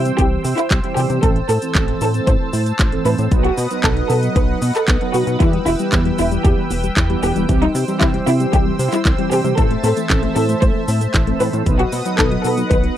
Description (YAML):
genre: italo disco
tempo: 115 BPM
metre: 4/4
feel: straight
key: unclear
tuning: A4 = 440 Hz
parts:
  - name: warm studio violin section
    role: melody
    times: 0.0-13.0 s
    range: D#4 to C5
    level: -21 LUFS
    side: equal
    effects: tape echo
  - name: warm analog pad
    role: sustained chords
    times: 0.0-13.0 s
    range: B4 to E6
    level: -26 LUFS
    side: equal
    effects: chorus
  - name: mellow synth brass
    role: stabs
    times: 0.0-12.9 s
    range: E3 to B4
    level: -24 LUFS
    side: right 3 dB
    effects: chorus
  - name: chorused synth bass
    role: bass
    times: 0.0-12.9 s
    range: E1 to C3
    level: -20 LUFS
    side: equal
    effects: none
  - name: house drum kit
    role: drums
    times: 0.1-12.9 s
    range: cabasa, handclaps, hi-hat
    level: -24 LUFS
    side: right 1 dB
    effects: none
  - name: electronic kick drum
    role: drums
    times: 0.2-12.8 s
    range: none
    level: -18 LUFS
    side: equal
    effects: none
  - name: soft round pluck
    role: arpeggios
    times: 5.4-12.9 s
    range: D#3 to C4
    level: -25 LUFS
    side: left 5 dB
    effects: chorus, tape echo
room: little or no reverb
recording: dry, close 1970s-style studio recording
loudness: -14 LUFS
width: side -11 dB against mid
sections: 0.0-13.0 A section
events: none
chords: 0.0 C; 1.2 Am; 3.3 B; 5.4 Em; 7.5 C; 9.6 Am; 11.7 B